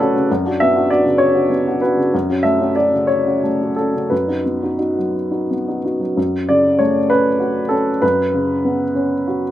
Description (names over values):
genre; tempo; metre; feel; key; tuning
neoclassical minimalist piano; 57-67 BPM (dotted quarters); 6/8; rubato; F# minor; A4 = 440 Hz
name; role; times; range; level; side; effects
warm upright piano; solo; 0.0-9.5 s; F#2 to E5; -15 LUFS; equal; slapback echo
room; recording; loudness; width
light reverb; recorded outdoors, with no room sound; -15 LUFS; side -13 dB against mid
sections
0.0-6.2 A section; 6.2-9.5 A section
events
none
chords
0.3 Bmadd9/F#; 2.1 F#m; 4.1 B/F#; 6.2 F#m; 8.0 Bsus2/F#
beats
| 0.29 1.20 | 2.13 3.09 | 4.11 5.15 | 6.17 7.10 | 8.02 8.95